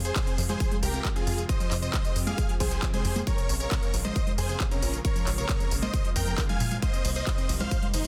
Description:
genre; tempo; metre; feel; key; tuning
uplifting trance; 135 BPM; 4/4; straight; F minor; A4 = 440 Hz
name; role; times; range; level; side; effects
big supersaw lead; melody; 0.0-8.1 s; Db4 to Ab5; -35 LUFS; equal; sidechain pumping, tape echo
lush unison pad; sustained chords; 0.0-8.1 s; C3 to G4; -43 LUFS; equal; chorus, phaser, sidechain pumping
tight sequencer bass; bass; 0.0-8.1 s; G1 to Bb2; -33 LUFS; equal; sidechain pumping
big-room dance drum kit; drums; 0.0-8.1 s; congas, handclaps, hi-hat, ride cymbal, tambourine; -36 LUFS; equal; none
unison pluck; arpeggios; 0.2-8.1 s; F2 to F4; -41 LUFS; equal; sidechain pumping, tape echo
electronic kick drum; drums; 0.2-7.8 s; none; -30 LUFS; equal; none
room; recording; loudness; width
little or no reverb; dense, heavily limited modern master; -27 LUFS; mono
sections
0.0-8.1 A section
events
none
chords
0.0 Fm; 3.3 Bbm7; 6.8 Cm7

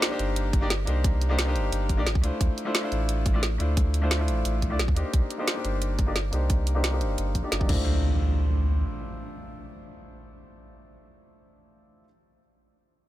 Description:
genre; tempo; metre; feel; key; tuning
liquid drum and bass; 176 BPM; 4/4; straight; D minor; A4 = 438 Hz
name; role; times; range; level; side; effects
bright grand piano; accompaniment; 0.0-12.1 s; A3 to D5; -31 LUFS; left 2 dB; low-pass filter, ping-pong delay
drum and bass drum kit; drums; 0.0-7.8 s; crash cymbal, hi-hat, snare drum; -30 LUFS; right 1 dB; none
warm sub bass; bass; 0.2-8.8 s; G1 to F2; -25 LUFS; equal; tube saturation
electronic kick drum; drums; 0.5-7.8 s; none; -24 LUFS; equal; none
impact; sound effects; 7.7-12.1 s; none; -34 LUFS; equal; none
room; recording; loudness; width
digital ambience; none; -23 LUFS; side -14 dB against mid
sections
0.0-7.9 A section; 7.9-10.6 B section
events
filter sweep on grand piano 0.0-7.9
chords
0.0 Cm9; 2.4 Dm9; 5.1 Cm9; 7.7 Dm9

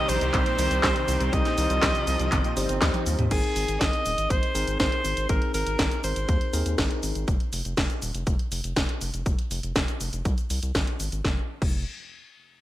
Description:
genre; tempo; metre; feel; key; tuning
italo disco; 121 BPM; 4/4; straight; F minor; A4 = 440 Hz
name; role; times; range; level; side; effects
bright alto saxophone; melody; 0.0-6.7 s; Ab4 to Eb5; -28 LUFS; right 1 dB; digital delay
lush unison pad; sustained chords; 0.0-3.3 s; Eb3 to C4; -31 LUFS; equal; chorus
direct-recorded clean electric guitar; arpeggios; 0.0-3.2 s; G2 to C4; -34 LUFS; right 3 dB; wide subtle chorus, digital delay
mellow tine electric piano; stabs; 0.0-7.2 s; C4 to C5; -33 LUFS; left 2 dB; medium stereo tremolo, vintage 12-bit sampler grit, digital delay
round analog bass; bass; 0.1-11.8 s; Eb1 to Eb2; -29 LUFS; equal; none
house drum kit; drums; 0.1-11.7 s; cabasa, crash cymbal, handclaps, hi-hat, snare drum, toms; -29 LUFS; equal; overdrive
electronic kick drum; drums; 0.3-11.7 s; none; -27 LUFS; equal; overdrive
room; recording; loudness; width
light reverb; bright 1980s-style digital production; -23 LUFS; side -14 dB against mid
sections
0.0-3.3 A section; 3.3-11.2 B section; 11.2-12.6 C section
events
drum fill 2.8-3.3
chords
0.0 Cm; 3.3 Abadd9; 7.3 Fm; 11.2 N.C.

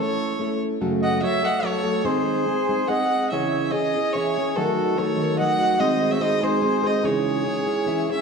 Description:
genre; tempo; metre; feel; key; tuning
mexican folk, mariachi; 145 BPM; 3/4; rubato; C# harmonic minor; A4 = 440 Hz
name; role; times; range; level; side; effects
rich violin; melody; 0.0-8.2 s; A4 to F#5; -24 LUFS; equal; none
mellow trumpet; second line; 0.0-8.2 s; C#4 to D#5; -28 LUFS; right 3 dB; none
nylon-string guitar; accompaniment; 0.0-8.2 s; F#2 to A4; -25 LUFS; equal; none
concert harp; arpeggios; 0.0-0.5, 3.3-8.2 s; D#3 to G#5; -26 LUFS; right 1 dB; none
room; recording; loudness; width
wet recital hall reverb, RT60 1.7 s; small room ambience; -20 LUFS; side -5 dB against mid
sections
0.0-8.2 A section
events
none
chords
0.0 A; 0.8 F#m; 2.0 G#; 3.3 C#m; 4.6 D#dim; 5.8 G#; 7.0 C#m

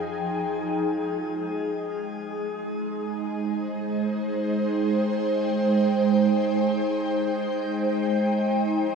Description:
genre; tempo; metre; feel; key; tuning
ambient; free time; none; none; unclear; A4 = 445 Hz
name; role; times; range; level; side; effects
ethereal airy pad; sustained chords; 0.0-8.9 s; F3 to G5; -23 LUFS; right 1 dB; ensemble chorus, built-in reverb, phaser, shimmer reverb
deep rumbling drone; bass; 0.0-0.5 s; F2; -57 LUFS; left 1 dB; none
room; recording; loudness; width
wet lush hall reverb, RT60 2.4 s; worn, warbling old tape, cassette tape, warbly pitch drift, nothing above 10.6 kHz; -23 LUFS; side -5 dB against mid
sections
0.6-8.9 A section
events
none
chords
0.0 Fm9; 0.6 Abmaj7; 8.4 F7sus2

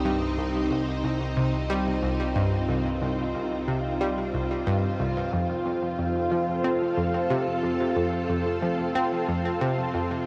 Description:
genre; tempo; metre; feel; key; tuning
ambient, sequencer-driven space music; 91 BPM; 4/4; straight; unclear; A4 = 438 Hz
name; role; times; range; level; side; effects
string machine, full ensemble; sustained chords; 0.0-10.3 s; C4 to A4; -29 LUFS; equal; ensemble chorus, shimmer reverb
round analog bass; bass; 0.0-5.3 s; C2; -38 LUFS; equal; none
analog pluck; riff; 0.1-10.1 s; C2 to C4; -30 LUFS; equal; chorus, delay, shimmer reverb
room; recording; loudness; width
wet huge ambient reverb, RT60 7.0 s; worn, warbling old tape, cassette tape, warbly pitch drift; -26 LUFS; mono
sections
0.0-5.3 A section; 5.3-10.3 B section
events
none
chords
0.0 Cm; 5.3 F

